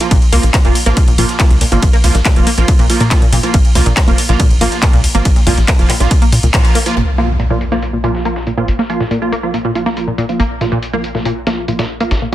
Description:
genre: driving peak-time techno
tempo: 140 BPM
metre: 4/4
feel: straight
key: Bb minor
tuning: A4 = 440 Hz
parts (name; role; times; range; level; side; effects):
- rave stab; stabs; 0.0-12.3 s; F3 to F4; -19 LUFS; right 3 dB; chorus, built-in reverb, sidechain pumping, digital delay
- dusty soul sampler-style drum kit; drums; 0.0-12.3 s; hi-hat, snare drum; -27 LUFS; left 1 dB; overdrive, sidechain pumping on hats, high-pass filter on hats, low-pass filter on hats, high-pass filter on snare, low-pass filter on snare, high-pass filter on room, low-pass filter on room
- techno drum kit; drums; 0.0-6.9 s; handclaps, hi-hat, ride cymbal; -18 LUFS; equal; sidechain pumping on hats, low-pass filter on hats, low-pass filter on snare, sidechain pumping on cymbals, low-pass filter on cymbals, low-pass filter on room
- tight sequenced synth; riff; 0.1-12.3 s; Bb2 to Bb3; -18 LUFS; equal; chorus, overdrive, sidechain pumping, digital delay
- tight sequencer bass; bass; 0.1-12.3 s; F1 to Bb2; -16 LUFS; equal; sidechain pumping
- electronic kick drum; drums; 0.1-6.6 s; none; -12 LUFS; equal; none
- impact; sound effects; 7.0-8.7 s; none; -19 LUFS; equal; none
room: digital ambience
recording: dense, heavily limited modern master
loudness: -10 LUFS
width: side -14 dB against mid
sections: 0.0-7.0 A section; 7.0-12.3 B section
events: drop 0.0-7.0; band accent 6.5; impact 7.0-8.7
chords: 0.0 Bb5

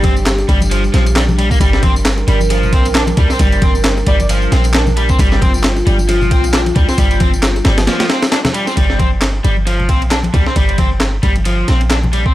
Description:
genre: breakbeat, breaks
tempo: 134 BPM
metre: 4/4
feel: swing 57% on 16ths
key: G minor pentatonic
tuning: A4 = 440 Hz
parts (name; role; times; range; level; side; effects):
- dark analog pad; sustained chords; 0.0-8.8 s; G3 to Bb4; -21 LUFS; equal; chorus, sidechain pumping
- crunchy overdriven guitar; riff; 0.0-12.3 s; F3 to D4; -19 LUFS; equal; spring reverb, analog delay
- warm 808-style bass; bass; 0.0-12.3 s; G1 to D2; -15 LUFS; equal; tube saturation
- breakbeat sampler-style drum kit; drums; 0.0-12.3 s; kick drum, ride cymbal, snare drum; -15 LUFS; equal; none
- congas and bongos; percussion; 0.0-12.1 s; none; -23 LUFS; left 3 dB; none
- electronic tambourine and handclaps; drums; 0.2-12.0 s; none; -24 LUFS; equal; none
- breathy flute-like synth lead; melody; 4.1-4.3 s; D5; -21 LUFS; right 1 dB; chorus, small speaker sound, analog delay
room: little or no reverb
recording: dry, gritty hardware recording, transformer saturation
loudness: -11 LUFS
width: side -15 dB against mid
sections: 0.0-8.8 A section; 8.8-12.3 B section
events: drop 0.0-8.8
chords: 0.0 Gm

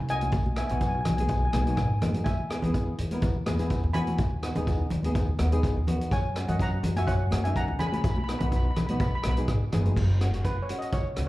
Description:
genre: calypso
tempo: 125 BPM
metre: 4/4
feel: swing 53% on 16ths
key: B major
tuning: A4 = 440 Hz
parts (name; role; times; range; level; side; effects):
- steel pan; melody; 0.0-11.2 s; B4 to B5; -33 LUFS; left 1 dB; slapback echo
- upright bass; bass; 0.0-11.3 s; F#1 to G#2; -28 LUFS; equal; none
- nylon-string guitar; accompaniment; 0.1-11.3 s; A#3 to A#4; -33 LUFS; equal; slapback echo
- street-band drum kit; drums; 0.1-11.3 s; crash cymbal, hi-hat, kick drum, rim click; -30 LUFS; equal; none
- congas; percussion; 0.2-10.0 s; none; -33 LUFS; equal; none
room: light reverb, studio reverb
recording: live gig heard through the venue's PA, club reverb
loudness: -24 LUFS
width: side -17 dB against mid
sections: 0.0-10.0 A section; 10.0-11.3 B section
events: steel pan solo 10.0-11.3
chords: 0.3 B6; 2.3 E; 4.2 B6/D#; 6.1 F#; 8.0 B6; 10.0 F#

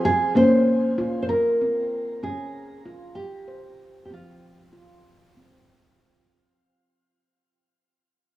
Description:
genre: world meditative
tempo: 64 BPM (dotted quarters)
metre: 6/8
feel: straight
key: F minor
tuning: A4 = 440 Hz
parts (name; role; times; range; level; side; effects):
- nylon-string guitar; melody; 0.0-5.6 s; F4 to C5; -23 LUFS; equal; cassette tape, shimmer reverb
- handpan; arpeggios; 0.0-6.0 s; F3 to C5; -24 LUFS; equal; cassette tape, shimmer reverb
room: wet small room reverb, RT60 0.6 s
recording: home recording on cassette, small room ambience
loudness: -19 LUFS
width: side -16 dB against mid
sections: 0.0-6.0 A section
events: fade-out 0.0-6.0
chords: 0.4 Bbm; 2.2 Db; 4.1 F5

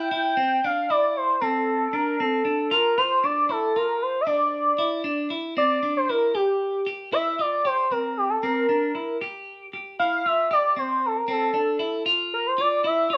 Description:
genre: progressive instrumental, progressive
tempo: 231 BPM (eighths)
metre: 11/8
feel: straight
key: C mixolydian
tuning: A4 = 441 Hz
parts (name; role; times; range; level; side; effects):
- pulse-width lead; melody; 0.0-13.2 s; G4 to G5; -24 LUFS; equal; chorus, plate reverb
- clean electric guitar; arpeggios; 0.0-13.2 s; C4 to G4; -30 LUFS; equal; phaser
room: moderate small room reverb, RT60 0.5 s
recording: none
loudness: -23 LUFS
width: mono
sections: 0.0-5.6 A section; 5.6-13.2 B section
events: analog synth lead solo 5.6-13.2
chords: 0.0 C69; 2.7 Dmadd9; 5.6 C7

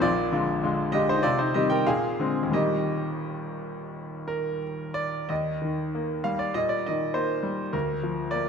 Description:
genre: classical, romantic character piece for solo piano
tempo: 84-102 BPM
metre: 4/4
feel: rubato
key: Eb major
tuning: A4 = 439 Hz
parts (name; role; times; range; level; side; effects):
- bright grand piano; solo; 0.0-8.5 s; Eb1 to G5; -24 LUFS; equal; none
room: moderate recital hall reverb, RT60 1.5 s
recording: dark, warm production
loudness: -24 LUFS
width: side -6 dB against mid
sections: 0.0-5.3 A section; 5.3-8.5 B section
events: none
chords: 0.0 Bb7; 1.2 Cm; 1.9 Bb9; 2.5 Eb; 7.7 Bb/D

